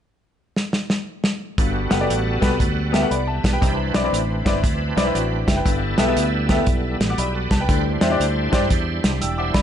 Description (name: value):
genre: uptempo gospel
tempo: 118 BPM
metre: 4/4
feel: swing 65% on 8ths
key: G major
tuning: A4 = 442 Hz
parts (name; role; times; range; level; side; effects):
- warm soul drum kit; drums; 0.6-9.6 s; hi-hat, kick drum, snare drum; -21 LUFS; equal; none
- clear grand piano; accompaniment; 1.6-9.6 s; G2 to E6; -23 LUFS; left 2 dB; none
- bright tonewheel organ; sustained chords; 1.6-9.6 s; Eb3 to G5; -26 LUFS; right 3 dB; slow rotary speaker, overdrive, chorus vibrato
- fingered electric bass; bass; 1.6-9.6 s; E1 to G2; -24 LUFS; equal; none
room: light reverb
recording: nothing above 11.0 kHz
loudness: -18 LUFS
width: side -9 dB against mid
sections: 0.0-1.6 A section; 1.6-9.6 B section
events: drum fill 0.6-1.6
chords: 0.0 N.C.; 1.6 Gmaj9; 5.7 G69; 7.7 D9sus4